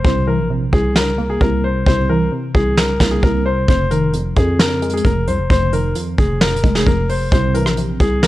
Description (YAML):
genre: hip hop, trap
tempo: 132 BPM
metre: 4/4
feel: half-time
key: F minor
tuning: A4 = 440 Hz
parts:
  - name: clear concert grand piano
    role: melody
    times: 0.0-8.3 s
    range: Ab4 to C5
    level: -20 LUFS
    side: left 2 dB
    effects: low-pass filter
  - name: warbly dusty pluck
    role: accompaniment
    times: 0.0-8.3 s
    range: F2 to Bb3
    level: -21 LUFS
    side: equal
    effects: chorus, phaser, low-pass filter
  - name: growling 808-style bass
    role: bass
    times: 0.0-8.3 s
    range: Eb1 to F2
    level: -19 LUFS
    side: equal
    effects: none
  - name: soft brush drum kit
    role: drums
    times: 0.0-8.3 s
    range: hi-hat, kick drum, rim click, snare drum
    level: -17 LUFS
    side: equal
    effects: none
room: studio ambience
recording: dry, gritty hardware recording, cassette tape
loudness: -14 LUFS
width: side -16 dB against mid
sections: 0.0-8.3 A section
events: break 0.0-3.7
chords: 0.0 C7; 3.7 Fm7; 7.3 C7